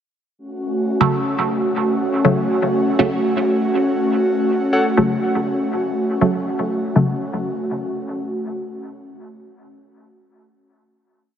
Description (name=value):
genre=dub techno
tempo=121 BPM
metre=4/4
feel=straight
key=F# minor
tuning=A4 = 439 Hz
part: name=airy breathy pad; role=sustained chords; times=0.4-8.3 s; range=A3 to F#4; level=-20 LUFS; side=equal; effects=chorus
part: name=filtered dub chord stab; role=stabs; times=1.0-7.1 s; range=C#3 to A3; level=-20 LUFS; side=equal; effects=phaser, cassette tape, dub echo
part: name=warbly lo-fi synth keys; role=riff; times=4.7-4.8 s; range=A4 to F#5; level=-23 LUFS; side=left 2 dB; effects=chorus, dub echo
room=moderate lush hall reverb, RT60 3.0 s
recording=none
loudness=-17 LUFS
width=side -9 dB against mid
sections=0.4-8.3 groove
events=filter sweep on synth stab 0.4-8.3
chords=0.4 F#m